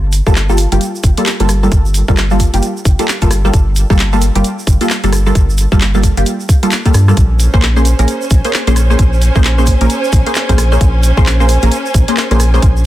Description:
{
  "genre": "UK garage, two-step garage",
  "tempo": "132 BPM",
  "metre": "4/4",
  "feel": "swing 61% on 16ths",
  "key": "unclear",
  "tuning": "A4 = 440 Hz",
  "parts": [
    { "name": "rubbery square bass", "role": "bass", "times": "0.0-12.9 s", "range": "G1 to G2", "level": "-12 LUFS", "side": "equal", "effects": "none" },
    { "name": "garage drum kit", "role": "drums", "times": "0.1-12.7 s", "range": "handclaps, hi-hat, rim click", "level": "-19 LUFS", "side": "equal", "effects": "none" },
    { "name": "egg shaker", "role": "percussion", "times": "0.1-12.8 s", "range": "none", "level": "-27 LUFS", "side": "right 5 dB", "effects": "none" },
    { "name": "punchy chord stab", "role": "stabs", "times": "0.3-12.6 s", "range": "G3 to C5", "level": "-16 LUFS", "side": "equal", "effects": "chorus, phaser, digital delay" },
    { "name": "electronic kick drum", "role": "drums", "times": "0.3-12.7 s", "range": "none", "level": "-11 LUFS", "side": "equal", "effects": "none" },
    { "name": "warm symphonic string section", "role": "texture", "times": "7.2-12.9 s", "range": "Db4 to Ab5", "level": "-20 LUFS", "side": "right 2 dB", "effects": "sidechain pumping" }
  ],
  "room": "little or no reverb",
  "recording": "dense, heavily limited modern master",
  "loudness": "-9 LUFS",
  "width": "side -14 dB against mid",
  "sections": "0.0-12.9 A section",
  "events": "none",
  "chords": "0.0 Gm9; 7.2 Bbm9"
}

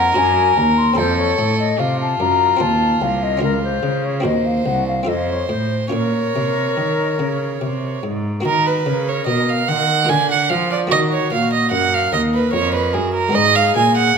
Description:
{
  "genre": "classical, baroque-style sonata movement with continuo",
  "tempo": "73 BPM",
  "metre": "3/4",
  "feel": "straight",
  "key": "Bb minor, Eb minor from 8.5 s",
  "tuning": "A4 = 440 Hz",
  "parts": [
    { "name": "baroque flute", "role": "melody", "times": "0.0-14.2 s", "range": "Gb4 to C6", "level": "-22 LUFS", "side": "left 7 dB", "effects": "none" },
    { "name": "warm violin", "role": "second line", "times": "0.0-14.2 s", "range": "F4 to Ab5", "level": "-19 LUFS", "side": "right 5 dB", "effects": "none" },
    { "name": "buff-stop harpsichord", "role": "accompaniment", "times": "0.0-14.2 s", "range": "C2 to C5", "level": "-25 LUFS", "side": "left 2 dB", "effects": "none" },
    { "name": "rich cello", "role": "bass", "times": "0.0-14.2 s", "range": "C2 to F3", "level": "-21 LUFS", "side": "right 1 dB", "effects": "none" }
  ],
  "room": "wet recital hall reverb, RT60 1.5 s",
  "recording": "none",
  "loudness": "-15 LUFS",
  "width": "side -6 dB against mid",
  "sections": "0.0-8.5 A section; 8.5-14.2 A section",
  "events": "none",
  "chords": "0.2 Cm7b5/Gb; 1.0 F; 2.6 F7/Eb; 3.4 Bbm/Db; 4.2 Cm7b5/Eb; 5.1 F; 5.9 Bbm; 8.5 Ebm; 10.1 Bb/D; 10.9 Ebm; 13.4 Abm"
}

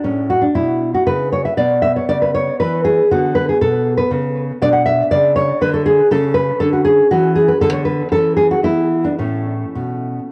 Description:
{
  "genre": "classical, baroque-style dance for nylon-string guitar",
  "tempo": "118 BPM",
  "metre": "3/4",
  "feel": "rubato",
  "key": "unclear",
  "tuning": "A4 = 441 Hz",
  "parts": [
    { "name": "nylon-string guitar", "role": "solo", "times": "0.0-10.3 s", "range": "A2 to F#5", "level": "-16 LUFS", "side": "equal", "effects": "analog delay" }
  ],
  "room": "light reverb, small room reverb",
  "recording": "home recording on cassette",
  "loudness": "-16 LUFS",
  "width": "mono",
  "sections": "0.0-10.3 A section",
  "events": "none",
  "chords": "0.0 A69; 1.6 Bm69; 3.1 Bm9; 6.1 Bm11/C#; 7.6 Bm/D; 8.1 A/E; 8.6 E5; 9.2 A"
}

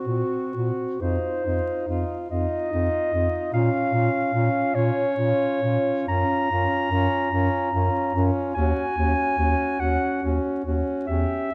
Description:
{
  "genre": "classical, lyrical piece for single-reed quartet",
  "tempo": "48 BPM (dotted quarters)",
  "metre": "6/8",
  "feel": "uneven beats, rubato",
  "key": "unclear",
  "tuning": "A4 = 439 Hz",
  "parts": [
    { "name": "mellow clarinet", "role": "melody", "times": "0.0-11.5 s", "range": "Gb4 to Bb5", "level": "-28 LUFS", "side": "equal", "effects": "none" },
    { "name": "bright alto saxophone", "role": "second line", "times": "0.0-11.5 s", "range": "F4 to G4", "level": "-34 LUFS", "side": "equal", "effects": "none" },
    { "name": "mellow tenor saxophone", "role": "accompaniment", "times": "0.0-11.5 s", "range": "C4 to Eb4", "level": "-30 LUFS", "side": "equal", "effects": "none" },
    { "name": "mellow bass clarinet", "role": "bass", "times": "0.1-11.2 s", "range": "Eb2 to Bb2", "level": "-28 LUFS", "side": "equal", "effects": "none" }
  ],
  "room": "moderate scoring stage reverb, RT60 1.6 s",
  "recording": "dark, warm production, vinyl crackle, nothing above 10.6 kHz",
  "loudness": "-24 LUFS",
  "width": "mono",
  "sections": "0.0-11.5 A section",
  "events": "none",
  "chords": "0.0 C(b5, no3)/Bb; 1.0 F5; 3.5 Bbm; 6.1 Gbmaj7; 8.6 Ebm7"
}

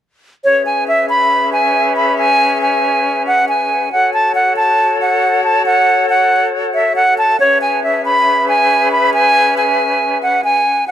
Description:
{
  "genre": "hip hop",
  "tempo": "138 BPM",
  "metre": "4/4",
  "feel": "half-time",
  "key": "C# minor",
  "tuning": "A4 = 439 Hz",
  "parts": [
    { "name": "breathy silver concert flute", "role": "melody", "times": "0.4-10.9 s", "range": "C#5 to B5", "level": "-12 LUFS", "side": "equal", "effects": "none" },
    { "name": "bright flute section", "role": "sustained chords", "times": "0.4-10.9 s", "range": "C#4 to E5", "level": "-18 LUFS", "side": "left 2 dB", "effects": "none" }
  ],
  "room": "light reverb, studio ambience",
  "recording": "dark, warm production",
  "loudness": "-11 LUFS",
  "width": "side -10 dB against mid",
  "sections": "0.4-10.9 A section",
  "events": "none",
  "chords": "0.4 C#m7; 3.9 F#m; 7.4 C#m7"
}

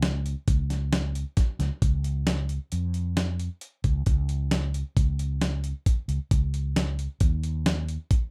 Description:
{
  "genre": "progressive instrumental, band music in an uneven meter",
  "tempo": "134 BPM",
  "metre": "5/4",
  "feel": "straight",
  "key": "Db major",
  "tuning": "A4 = 441 Hz",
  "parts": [
    { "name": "fretless electric bass", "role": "bass", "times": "0.0-8.0 s", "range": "Db2 to F2", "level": "-29 LUFS", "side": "equal", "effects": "none" },
    { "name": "dusty soul sampler-style drum kit", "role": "drums", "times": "0.0-8.2 s", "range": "hi-hat, kick drum, snare drum", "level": "-27 LUFS", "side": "equal", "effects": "none" }
  ],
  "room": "little or no reverb",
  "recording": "rough home demo mix",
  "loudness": "-27 LUFS",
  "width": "mono",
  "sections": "0.0-8.3 A section",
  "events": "none",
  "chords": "none"
}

